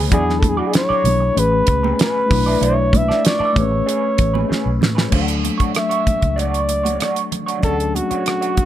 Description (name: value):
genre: lush 1970s-style soul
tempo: 96 BPM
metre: 4/4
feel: straight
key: unclear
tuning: A4 = 439 Hz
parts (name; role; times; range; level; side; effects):
- breathy flugelhorn; melody; 0.0-8.7 s; F#4 to E5; -20 LUFS; equal; none
- mellow tine electric piano; accompaniment; 0.0-8.7 s; C#3 to G#5; -23 LUFS; left 6 dB; medium stereo tremolo
- electric guitar through a small old amp; riff; 0.0-8.6 s; C#4 to D5; -26 LUFS; right 6 dB; wah, spring reverb
- vintage muted fingered electric bass; bass; 0.0-8.6 s; A1 to A2; -21 LUFS; equal; none
- damped 70s drum kit; drums; 0.1-8.7 s; crash cymbal, hi-hat, kick drum, rim click, snare drum; -19 LUFS; right 1 dB; none
- congas; percussion; 0.1-8.7 s; none; -27 LUFS; right 6 dB; none
- glockenspiel with hard plastic mallets; texture; 0.1-4.0 s; B5 to E6; -36 LUFS; right 1 dB; none
room: studio reverb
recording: none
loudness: -15 LUFS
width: side -12 dB against mid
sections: 0.0-5.1 A section; 5.1-8.7 B section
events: drum fill 4.5-5.1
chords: 0.1 E9; 1.4 Amaj9; 2.3 Bm11; 3.6 Amaj9; 5.1 Dmaj7